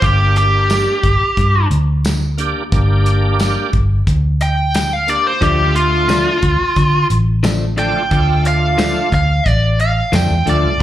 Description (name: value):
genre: straight-eighth soul blues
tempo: 89 BPM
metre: 4/4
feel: straight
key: D minor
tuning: A4 = 440 Hz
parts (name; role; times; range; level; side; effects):
- biting lead guitar; melody; 0.0-10.8 s; F4 to G5; -16 LUFS; equal; overdrive, slapback echo
- bright tonewheel organ; accompaniment; 0.0-10.8 s; A3 to G4; -22 LUFS; right 3 dB; overdrive, chorus vibrato, slow rotary speaker, slapback echo
- vintage muted fingered electric bass; bass; 0.0-10.8 s; G1 to D3; -15 LUFS; equal; none
- warm soul drum kit; drums; 0.0-10.8 s; hi-hat, kick drum, snare drum, tambourine; -20 LUFS; equal; none
- direct-recorded clean electric guitar; stabs; 5.4-10.8 s; Bb2 to D4; -22 LUFS; left 6 dB; none
room: studio reverb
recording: live gig heard through the venue's PA, club reverb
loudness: -12 LUFS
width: side -12 dB against mid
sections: 0.0-10.8 A section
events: none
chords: 0.0 Gm; 5.4 Dm